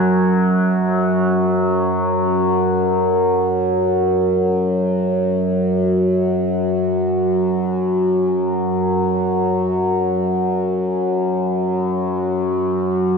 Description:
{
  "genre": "ambient",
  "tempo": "free time",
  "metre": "none",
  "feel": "none",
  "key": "unclear",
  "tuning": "A4 = 439 Hz",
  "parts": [
    { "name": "overtone-sweeping drone", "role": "solo", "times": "0.0-13.2 s", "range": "F#2 to F#3", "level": "-16 LUFS", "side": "equal", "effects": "chorus, built-in reverb, tape echo" }
  ],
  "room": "wet cathedral reverb, RT60 5.8 s",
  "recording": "dark, warm production",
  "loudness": "-16 LUFS",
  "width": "side -5 dB against mid",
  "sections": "0.0-8.3 A section; 8.3-13.2 B section",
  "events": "none",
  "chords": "none"
}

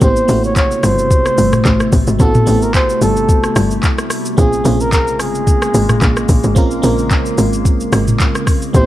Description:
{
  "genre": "amapiano",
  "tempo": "110 BPM",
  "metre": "4/4",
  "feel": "swing 55% on 16ths",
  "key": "unclear",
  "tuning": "A4 = 437 Hz",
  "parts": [
    { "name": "trumpet with bucket mute", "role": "melody", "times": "0.0-8.9 s", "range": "Ab4 to Db5", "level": "-18 LUFS", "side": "equal", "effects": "tape echo" },
    { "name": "FM electric piano", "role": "accompaniment", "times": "0.0-8.9 s", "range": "A3 to Bb4", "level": "-21 LUFS", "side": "right 4 dB", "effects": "chorus" },
    { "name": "glassy FM pad", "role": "sustained chords", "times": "0.0-8.9 s", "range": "C3 to Bb3", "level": "-21 LUFS", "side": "left 1 dB", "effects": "ensemble chorus, built-in reverb, sidechain pumping" },
    { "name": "tight log drum bass", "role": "bass", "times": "0.0-8.9 s", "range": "G1 to Bb1", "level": "-16 LUFS", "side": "equal", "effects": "none" },
    { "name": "smooth R&B drum kit", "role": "drums", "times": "0.0-8.9 s", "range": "handclaps, hi-hat, kick drum, rim click, shaker, toms", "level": "-14 LUFS", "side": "equal", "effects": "none" }
  ],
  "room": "digital ambience",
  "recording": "dark, warm production",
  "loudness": "-11 LUFS",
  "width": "side -14 dB against mid",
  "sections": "0.0-8.9 A section",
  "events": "none",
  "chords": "0.0 Am9; 4.4 Bbm9"
}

